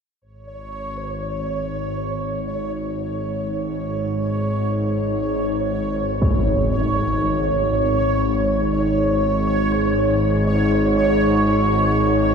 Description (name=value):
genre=dark ambient drone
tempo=free time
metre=none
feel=none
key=unclear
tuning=A4 = 442 Hz
part: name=bowed-like drone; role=drone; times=0.6-12.3 s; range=G#1 to G#2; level=-20 LUFS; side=equal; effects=built-in reverb
part: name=bubbling stepped-filter texture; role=texture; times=0.5-12.3 s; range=C#5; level=-23 LUFS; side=right 1 dB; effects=chorus, built-in reverb
part: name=impact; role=percussion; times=6.2-6.4 s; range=none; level=-24 LUFS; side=equal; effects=low-pass filter on sfx
room=wet huge ambient reverb, RT60 8.3 s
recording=cassette tape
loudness=-18 LUFS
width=side -6 dB against mid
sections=0.2-12.3 A section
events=filter sweep on synth drone 0.2-12.3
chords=0.2 G#sus4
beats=free time